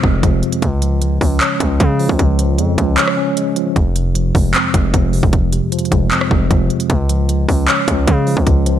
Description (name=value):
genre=hip hop, trap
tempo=153 BPM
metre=4/4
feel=half-time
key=unclear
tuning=A4 = 440 Hz
part: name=mellow tine electric piano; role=accompaniment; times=0.0-8.8 s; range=F2 to Db5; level=-18 LUFS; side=equal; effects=medium stereo tremolo, low-pass filter
part: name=distorted 808-style bass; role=bass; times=0.0-8.8 s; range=F1 to Db3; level=-16 LUFS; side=equal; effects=distortion
part: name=trap drum kit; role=drums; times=0.0-8.8 s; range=handclaps, hi-hat, kick drum, rim click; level=-16 LUFS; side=equal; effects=none
room=digital ambience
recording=none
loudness=-13 LUFS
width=side -10 dB against mid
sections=0.0-8.8 A section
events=kick muted 3.0-3.8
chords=0.0 Fm; 0.6 Db; 3.8 Fm; 6.9 Db